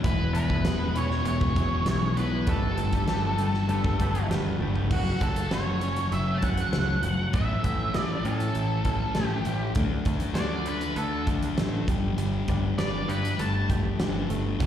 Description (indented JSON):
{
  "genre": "quiet-loud alternative rock",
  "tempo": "99 BPM",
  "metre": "4/4",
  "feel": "straight",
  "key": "unclear",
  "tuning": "A4 = 438 Hz",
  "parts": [
    { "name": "octave-fuzz lead guitar", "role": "melody", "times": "0.0-13.7 s", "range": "F#4 to A5", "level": "-32 LUFS", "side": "right 1 dB", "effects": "distortion, plate reverb, slapback echo, analog delay" },
    { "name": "semi-hollow electric guitar", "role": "arpeggios", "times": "0.0-14.7 s", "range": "A2 to B4", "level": "-33 LUFS", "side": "right 4 dB", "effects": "wide subtle chorus, plate reverb, slapback echo" },
    { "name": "thick fuzz guitar", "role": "riff", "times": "0.0-14.7 s", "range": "E2 to D4", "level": "-31 LUFS", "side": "left 9 dB", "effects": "distortion, slapback echo" },
    { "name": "growling picked electric bass", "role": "bass", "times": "0.0-14.7 s", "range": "E1 to A2", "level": "-29 LUFS", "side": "equal", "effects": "overdrive" },
    { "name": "huge arena drum kit", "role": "drums", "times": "0.0-14.7 s", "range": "crash cymbal, hi-hat, kick drum, snare drum, toms", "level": "-29 LUFS", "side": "right 1 dB", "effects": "none" },
    { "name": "thick fuzz guitar", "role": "riff", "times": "14.6-14.7 s", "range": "F#2 to F#3", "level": "-28 LUFS", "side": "right 5 dB", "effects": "distortion" }
  ],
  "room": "light reverb",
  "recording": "live gig heard through the venue's PA, recital hall reverb",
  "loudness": "-24 LUFS",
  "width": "side -10 dB against mid",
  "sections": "0.0-4.9 A section; 4.9-14.7 B section",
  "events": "drum fill 4.6-4.9; lead electric guitar solo 4.9-14.7",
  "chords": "0.0 E; 2.5 Gadd9; 4.9 F#m; 7.3 A; 9.8 D; 11.9 Gadd9"
}